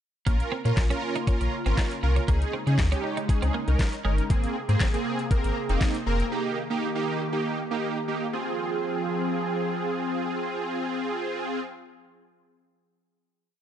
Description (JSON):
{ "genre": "dance-pop", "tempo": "119 BPM", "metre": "4/4", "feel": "straight", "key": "F minor", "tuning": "A4 = 440 Hz", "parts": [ { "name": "big bright polysynth", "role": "accompaniment", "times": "0.3-11.6 s", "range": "Bb3 to Bb4", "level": "-29 LUFS", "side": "right 2 dB", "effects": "analog chorus, sidechain pumping" }, { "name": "airy breathy pad", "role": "sustained chords", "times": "0.3-11.6 s", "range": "C3 to Ab4", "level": "-32 LUFS", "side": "equal", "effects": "chorus, sidechain pumping" }, { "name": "twelve-string electric guitar", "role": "riff", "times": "0.3-4.1 s", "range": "Ab3 to Eb4", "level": "-35 LUFS", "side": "right 5 dB", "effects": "wide subtle chorus" }, { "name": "sub bass with octave", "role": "bass", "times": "0.3-6.2 s", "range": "F1 to Db3", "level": "-24 LUFS", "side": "left 1 dB", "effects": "sidechain pumping" }, { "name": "smooth R&B drum kit", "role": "drums", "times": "0.3-6.3 s", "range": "handclaps, hi-hat, kick drum, snare drum", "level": "-25 LUFS", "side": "left 1 dB", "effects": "none" } ], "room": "light reverb", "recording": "nothing above 10.5 kHz", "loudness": "-24 LUFS", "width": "side -10 dB against mid", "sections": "0.3-8.3 pre-chorus; 8.3-12.4 final chord", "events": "none", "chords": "0.3 Bbm; 2.3 Dbsus2; 4.3 Abadd9; 6.3 Eb; 8.3 Fm", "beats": "| 0.27 0.77 1.27 1.78 | 2.28 2.79 3.29 3.80 | 4.30 4.80 5.31 5.81 | 6.32 6.82 7.33 7.83 | 8.33 8.84 9.34 9.85 | 10.35 10.85 11.36" }